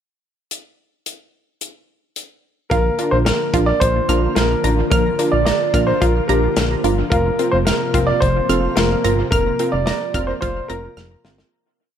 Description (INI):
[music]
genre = synth-pop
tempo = 109 BPM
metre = 4/4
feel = straight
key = Bb major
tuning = A4 = 441 Hz
[part]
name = modern studio drum kit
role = drums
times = 0.5-11.5 s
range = hi-hat, kick drum, snare drum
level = -22 LUFS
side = equal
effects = dub echo
[part]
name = warm concert grand piano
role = melody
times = 2.7-11.2 s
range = Bb4 to D5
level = -20 LUFS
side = right 1 dB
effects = dub echo
[part]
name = string machine, violas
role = sustained chords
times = 2.7-11.5 s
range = C3 to F4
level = -26 LUFS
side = equal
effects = ensemble chorus
[part]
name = analog pluck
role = arpeggios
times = 2.7-11.4 s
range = F4 to F6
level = -26 LUFS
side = right 2 dB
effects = chorus, dub echo
[part]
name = chorused synth bass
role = bass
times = 2.7-11.4 s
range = F1 to Bb1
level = -20 LUFS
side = equal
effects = none
[part]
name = funky polysynth comp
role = accompaniment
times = 3.0-11.5 s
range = C4 to Bb4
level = -24 LUFS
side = right 1 dB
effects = chorus, dub echo
[sound]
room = light reverb, small room ambience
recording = echo-heavy mix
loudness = -15 LUFS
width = side -9 dB against mid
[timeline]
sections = 0.5-2.7 pickup bar; 2.7-11.5 verse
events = fade-out 9.3-11.5; drum fill 11.0-11.5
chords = 0.5 N.C.; 2.7 Bb; 7.1 Fsus4